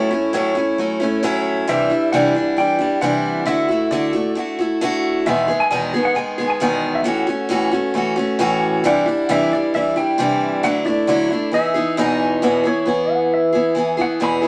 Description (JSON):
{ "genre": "rock", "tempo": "134 BPM", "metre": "4/4", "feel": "straight", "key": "E major", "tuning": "A4 = 440 Hz", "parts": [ { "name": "clean lap steel guitar", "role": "melody", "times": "0.0-14.4 s", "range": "C#5 to B5", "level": "-24 LUFS", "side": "equal", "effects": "none" }, { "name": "picked steel-string acoustic guitar", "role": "accompaniment", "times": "0.0-14.5 s", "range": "E2 to G#4", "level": "-20 LUFS", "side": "equal", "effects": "none" } ], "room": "wet studio reverb, RT60 0.6 s", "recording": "vinyl crackle", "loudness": "-19 LUFS", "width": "mono", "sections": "0.0-12.4 A section; 12.4-14.5 B section", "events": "electric slide guitar solo 12.4-14.5", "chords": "0.0 A6; 1.7 Cadd9; 3.5 Dadd9; 5.3 Emaj7; 7.1 A6; 8.8 Cadd9; 10.6 Dadd9; 11.5 Emaj7; 12.4 E" }